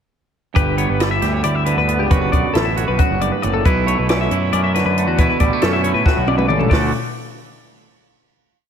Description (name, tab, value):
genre	math rock and midwest emo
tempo	274 BPM (eighths)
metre	7/8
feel	straight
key	D major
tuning	A4 = 442 Hz
part	twangy electric guitar	accompaniment	0.5-6.9 s	D2 to G4	-21 LUFS	right 9 dB	slapback echo
part	twelve-string electric guitar	arpeggios	0.6-6.9 s	F#4 to E5	-20 LUFS	left 7 dB	none
part	fuzz picked electric bass	bass	0.6-6.9 s	F#1 to A2	-20 LUFS	equal	overdrive
part	compact cocktail drum kit	drums	0.6-6.8 s	hi-hat, kick drum, snare drum, toms	-19 LUFS	equal	none
room	moderate lush hall reverb, RT60 1.7 s, small room ambience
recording	big arena sound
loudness	-14 LUFS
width	side -8 dB against mid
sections	0.6-6.7 A section; 6.7-8.2 final chord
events	drum fill 6.1-6.7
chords	0.6 G6; 2.1 D69/F#; 3.7 Bm11; 6.7 Dmaj7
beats	| 0.56 0.78 1.00 1.22 1.45 1.67 1.89 | 2.11 2.33 2.55 2.77 2.99 3.21 3.43 | 3.65 3.87 4.09 4.31 4.53 4.75 4.97 | 5.19 5.41 5.62 5.84 6.06 6.28 6.49 | 6.71